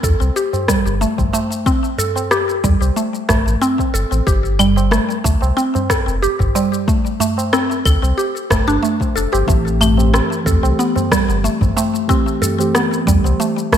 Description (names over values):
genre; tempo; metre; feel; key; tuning
organic downtempo; 92 BPM; 4/4; swing 53% on 16ths; A minor; A4 = 440 Hz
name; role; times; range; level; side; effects
mallet-like synth pluck; arpeggios; 0.0-13.8 s; G3 to A4; -18 LUFS; equal; analog chorus, ping-pong delay
warm sub bass; bass; 0.0-13.8 s; F1 to E2; -17 LUFS; equal; sidechain pumping
electronic kick drum; drums; 0.0-13.8 s; none; -19 LUFS; equal; studio reverb
electronic shaker, rim click and claves; drums; 0.0-13.8 s; none; -21 LUFS; left 1 dB; studio reverb, gated reverb
tabla; percussion; 0.2-13.8 s; none; -25 LUFS; right 2 dB; none
muted felt-like synth keys; accompaniment; 9.5-13.8 s; E3 to G4; -21 LUFS; right 1 dB; chorus, vintage 12-bit sampler grit, sidechain pumping, ping-pong delay
room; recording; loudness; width
moderate plate reverb, RT60 2.2 s; bright 1980s-style digital production; -14 LUFS; side -9 dB against mid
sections
0.0-13.8 A section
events
none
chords
0.0 Am7; 4.3 Gsus4; 9.5 Am7